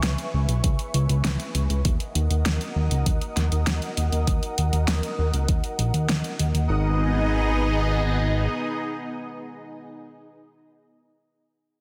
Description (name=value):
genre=synthwave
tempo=99 BPM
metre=4/4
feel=straight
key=G# minor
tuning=A4 = 440 Hz
part: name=lush unison pad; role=sustained chords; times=0.0-9.9 s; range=B3 to D#6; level=-31 LUFS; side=equal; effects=chorus, phaser, sidechain pumping
part: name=fat analog bass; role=bass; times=0.0-8.5 s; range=G#1 to D#2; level=-25 LUFS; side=equal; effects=sidechain pumping
part: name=pop drum kit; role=drums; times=0.0-6.7 s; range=hi-hat, snare drum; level=-31 LUFS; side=equal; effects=overdrive
part: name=electronic kick drum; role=drums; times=0.6-5.6 s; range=none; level=-26 LUFS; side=equal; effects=overdrive
room=light reverb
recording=dense, heavily limited modern master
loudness=-24 LUFS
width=mono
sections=0.0-6.7 A section; 6.7-9.1 B section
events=filter sweep on analog synth pad 0.0-6.7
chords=0.0 C#m7; 1.8 D#m; 6.7 G#m